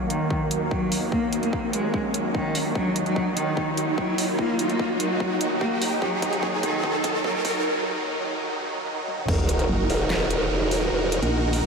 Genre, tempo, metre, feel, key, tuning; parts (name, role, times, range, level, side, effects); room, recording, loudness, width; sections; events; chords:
heavy wobble dubstep; 147 BPM; 4/4; half-time; Eb minor; A4 = 440 Hz
warm cello; melody; 0.0-7.5 s; Eb3 to Bb3; -28 LUFS; left 1 dB; low-pass filter, diffuse ambient delay
supersaw chords; sustained chords; 0.0-11.7 s; Eb2 to Bb4; -27 LUFS; right 2 dB; phaser, vintage 12-bit sampler grit, sidechain pumping, low-pass filter
riser and sub drop; sound effects; 0.0-10.9 s; -29 LUFS; equal
dubstep drum kit; drums; 0.1-11.6 s; crash cymbal, handclaps, hi-hat, snare drum, toms; -32 LUFS; right 1 dB; overdrive
electronic kick drum; drums; 0.3-9.4 s; -31 LUFS; equal; overdrive
growl bass; bass; 9.3-11.2 s; Eb1 to Fb1; -24 LUFS; equal; chorus, overdrive
metallic wobble bass; bass; 9.7-11.7 s; Gb1 to Bb1; -23 LUFS; equal; chorus, overdrive
wet huge ambient reverb, RT60 6.3 s; dreamy mix soaked in reverb, high-pass filter; -22 LUFS; side -5 dB against mid
0.0-9.3 A section; 9.3-11.7 B section
build-up 0.0-9.3; riser 0.0-7.7; filter sweep on supersaw synth 0.0-9.3; filter sweep on cello 0.0-9.3; filter sweep 0.0-9.3; drum fill 2.8-7.7, 9.1; break 7.7-9.3; drop 9.3-11.7; impact 9.3-10.9
0.0 Ebm